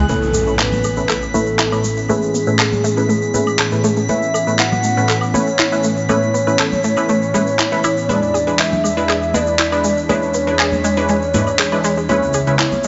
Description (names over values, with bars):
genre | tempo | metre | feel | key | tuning
progressive house | 120 BPM | 4/4 | straight | A major | A4 = 440 Hz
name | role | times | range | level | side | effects
warm analog pad | sustained chords | 0.0-12.9 s | C#2 to E4 | -24 LUFS | equal | subtle chorus
analog pluck | arpeggios | 0.0-12.9 s | G#2 to A4 | -25 LUFS | equal | chorus, tape echo
drifting glass-harmonics texture | texture | 0.0-12.9 s | F#6 to B6 | -32 LUFS | equal | chorus, built-in reverb
soft octave-layered synth lead | melody | 0.1-12.9 s | G#4 to F#5 | -22 LUFS | equal | chorus, dub echo
supersaw stab | stabs | 0.1-12.7 s | A2 to B4 | -24 LUFS | equal | low-pass filter, tape echo
congas and woodblock | percussion | 0.1-12.8 s | none | -28 LUFS | equal | none
egg shaker | percussion | 0.1-12.9 s | none | -32 LUFS | equal | none
impact | sound effects | 0.1-2.1 s | none | -28 LUFS | equal | none
electronic handclaps | drums | 0.6-12.7 s | none | -22 LUFS | equal | none
room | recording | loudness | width
moderate lush hall reverb, RT60 2.2 s | nothing above 7.8 kHz | -16 LUFS | mono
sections
0.1-12.9 A section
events
impact 0.1-2.1; filter sweep on synth arpeggio sound 0.1-12.9; filter sweep on supersaw synth 0.1-12.9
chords
0.1 Aadd9; 8.1 E7; 12.1 C#m7